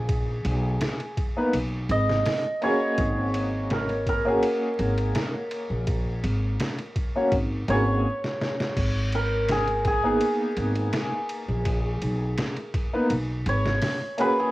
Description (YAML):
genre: trip hop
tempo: 83 BPM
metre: 4/4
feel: straight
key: G# minor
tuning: A4 = 440 Hz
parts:
  - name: cimbalom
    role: melody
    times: 0.0-14.5 s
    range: G#4 to D#5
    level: -28 LUFS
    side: equal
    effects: tape echo
  - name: felt-muted upright piano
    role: accompaniment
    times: 0.0-14.5 s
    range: A#3 to C#5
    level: -28 LUFS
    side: equal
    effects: tremolo, cassette tape, tape echo
  - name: upright bass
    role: bass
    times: 0.0-13.8 s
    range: G#1 to B1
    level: -26 LUFS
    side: equal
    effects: none
  - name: trip hop sampler-style drum kit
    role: drums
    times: 0.1-14.4 s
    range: crash cymbal, hi-hat, kick drum, ride cymbal, snare drum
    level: -30 LUFS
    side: equal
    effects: studio reverb, cassette tape
room: studio reverb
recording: home recording on cassette, vinyl crackle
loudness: -23 LUFS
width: side -17 dB against mid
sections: 0.0-8.8 A section; 8.8-14.5 A section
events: stop 8.0-8.8; drum fill 8.2-8.8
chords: 0.0 G#madd9; 3.0 F#add9/G#; 8.8 G#madd9